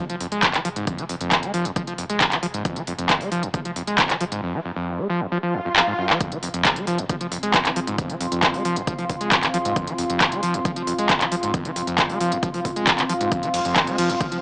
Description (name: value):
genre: driving peak-time techno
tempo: 135 BPM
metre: 4/4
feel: straight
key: F minor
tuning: A4 = 440 Hz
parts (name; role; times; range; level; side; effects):
- overdriven acid bass; riff; 0.0-14.4 s; F2 to Ab3; -25 LUFS; equal; wide subtle chorus, sidechain pumping, analog delay
- techno drum kit; drums; 0.1-14.4 s; handclaps, hi-hat, ride cymbal; -20 LUFS; equal; overdrive, sidechain pumping on hats, sidechain pumping on cymbals
- saturated sub bass; bass; 0.2-14.2 s; F1; -43 LUFS; equal; none
- electronic kick drum; drums; 0.4-14.3 s; none; -27 LUFS; equal; overdrive
- swell; sound effects; 5.5-6.2 s; none; -28 LUFS; equal; none
- deep dark ambient pad; texture; 7.4-14.4 s; C4 to Eb6; -26 LUFS; equal; chorus, built-in reverb, sidechain pumping
room: light reverb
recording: dry, gritty hardware recording, transformer saturation, cassette tape, small speaker sound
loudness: -19 LUFS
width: side -27 dB against mid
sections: 0.0-6.2 A section; 6.2-14.4 B section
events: swell 5.5-6.2; drum fill 5.8-6.2; drop 6.2-14.4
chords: 0.0 Fm; 6.2 F5